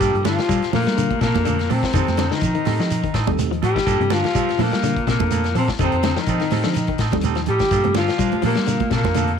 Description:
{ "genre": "afrobeat", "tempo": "124 BPM", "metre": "4/4", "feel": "swing 55% on 16ths", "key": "G minor", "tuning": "A4 = 439 Hz", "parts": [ { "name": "trombone with bucket mute", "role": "melody", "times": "0.0-9.4 s", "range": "Bb3 to G4", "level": "-24 LUFS", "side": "left 3 dB", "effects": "tape echo" }, { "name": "bright tenor saxophone", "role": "second line", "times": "0.0-9.4 s", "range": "Bb3 to G4", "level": "-30 LUFS", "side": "right 13 dB", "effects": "none" }, { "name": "raspy baritone saxophone", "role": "second line", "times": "0.0-9.4 s", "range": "Bb2 to G3", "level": "-29 LUFS", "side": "left 12 dB", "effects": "none" }, { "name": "mellow tine electric piano", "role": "accompaniment", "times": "0.0-9.3 s", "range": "Bb3 to C5", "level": "-31 LUFS", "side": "right 14 dB", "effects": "medium stereo tremolo" }, { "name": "semi-hollow electric guitar", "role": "stabs", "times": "0.0-9.3 s", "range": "F3 to A4", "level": "-29 LUFS", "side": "right 12 dB", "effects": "spring reverb" }, { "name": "hollow-body short-scale fingered electric bass", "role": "bass", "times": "0.0-9.4 s", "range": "Eb2 to G3", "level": "-23 LUFS", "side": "equal", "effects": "none" }, { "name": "vintage drum kit", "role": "drums", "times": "0.0-9.4 s", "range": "hi-hat, kick drum, snare drum", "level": "-27 LUFS", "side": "left 4 dB", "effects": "none" }, { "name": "shekere", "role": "percussion", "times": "0.0-9.3 s", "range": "none", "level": "-29 LUFS", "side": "right 7 dB", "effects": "none" }, { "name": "electric guitar at the edge of break-up", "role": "arpeggios", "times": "0.2-9.3 s", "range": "C3 to G3", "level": "-27 LUFS", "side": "left 12 dB", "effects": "tape echo" }, { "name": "congas", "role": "percussion", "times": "0.3-9.3 s", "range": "none", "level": "-26 LUFS", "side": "right 12 dB", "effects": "none" } ], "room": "light reverb, small room ambience", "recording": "1960s-style stereo with parts hard left and right", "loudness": "-17 LUFS", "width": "side -7 dB against mid", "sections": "0.0-9.4 A section", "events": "none", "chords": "0.0 Gm9; 1.9 F9; 3.9 Gm9; 5.8 F9; 7.7 Gm9" }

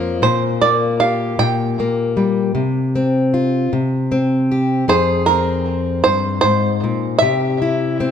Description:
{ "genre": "acoustic folk duo or small band", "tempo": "52 BPM (dotted quarters)", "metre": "6/8", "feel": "straight", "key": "F harmonic minor from 4.9 s", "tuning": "A4 = 440 Hz", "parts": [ { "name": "fingerpicked plugged-in steel-string acoustic guitar", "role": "accompaniment", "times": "0.0-8.1 s", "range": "F2 to Ab4", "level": "-17 LUFS", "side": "left 2 dB", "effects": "none" }, { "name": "bluegrass banjo", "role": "melody", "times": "0.2-8.1 s", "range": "Bb4 to G5", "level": "-17 LUFS", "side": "right 3 dB", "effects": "tape echo" } ], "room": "moderate scoring stage reverb, RT60 2.1 s", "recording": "close, detailed microphones", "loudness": "-15 LUFS", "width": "side -8 dB against mid", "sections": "0.0-4.9 A section; 4.9-8.1 B section", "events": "none", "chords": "0.2 Gm/Bb; 2.6 Csus4; 3.7 C5; 4.9 Fm; 7.2 C" }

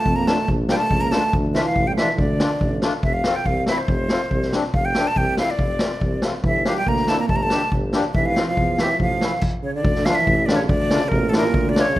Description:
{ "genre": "klezmer", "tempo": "141 BPM", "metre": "2/4", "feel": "straight", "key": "D harmonic minor, F major from 3.0 s", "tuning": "A4 = 440 Hz", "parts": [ { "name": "breathy bright concert flute", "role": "melody", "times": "0.0-12.0 s", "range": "A4 to Bb5", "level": "-23 LUFS", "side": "equal", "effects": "none" }, { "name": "trombone with bucket mute", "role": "second line", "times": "0.0-2.8, 6.4-12.0 s", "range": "A2 to C4", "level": "-26 LUFS", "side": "right 4 dB", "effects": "none" }, { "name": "warm tuba", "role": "bass", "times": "0.1-12.0 s", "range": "F1 to F2", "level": "-26 LUFS", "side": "equal", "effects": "none" }, { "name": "street-band drum kit", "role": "drums", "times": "0.1-12.0 s", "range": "crash cymbal, kick drum, snare drum", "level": "-22 LUFS", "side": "equal", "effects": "none" }, { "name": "accordion", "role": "accompaniment", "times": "0.3-11.9 s", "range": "A3 to G4", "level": "-27 LUFS", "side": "left 3 dB", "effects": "none" } ], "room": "moderate recital hall reverb, RT60 1.3 s", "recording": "dark, warm production", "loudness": "-18 LUFS", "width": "side -15 dB against mid", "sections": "0.0-3.0 A section; 3.0-9.8 B section; 9.8-12.0 C section", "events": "stop 9.4-9.8", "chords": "0.0 Bb; 1.3 Dm; 3.0 F; 6.4 Gm; 8.1 F; 9.0 A; 9.8 Dm" }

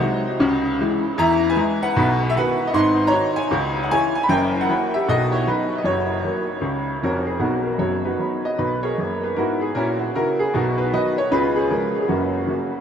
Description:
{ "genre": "jazz, stride piano", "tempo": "154 BPM", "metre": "4/4", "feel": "swing 62% on 8ths", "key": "B major", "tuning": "A4 = 440 Hz", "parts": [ { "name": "bright upright piano", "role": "solo", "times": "0.0-12.8 s", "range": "E#1 to C6", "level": "-18 LUFS", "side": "equal", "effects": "analog chorus, diffuse ambient delay" } ], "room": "wet huge ambient reverb, RT60 6.1 s", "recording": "dreamy mix soaked in reverb", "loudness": "-18 LUFS", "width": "side -8 dB against mid", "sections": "0.0-7.4 A section; 7.4-12.8 B section", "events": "none", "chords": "0.4 C#m; 1.2 E; 2.0 B; 2.7 G#5; 3.5 C#m; 4.3 F#7b9; 5.1 B; 5.8 F#; 7.4 B; 9.0 F#9; 10.5 B; 11.3 C#; 12.1 F#" }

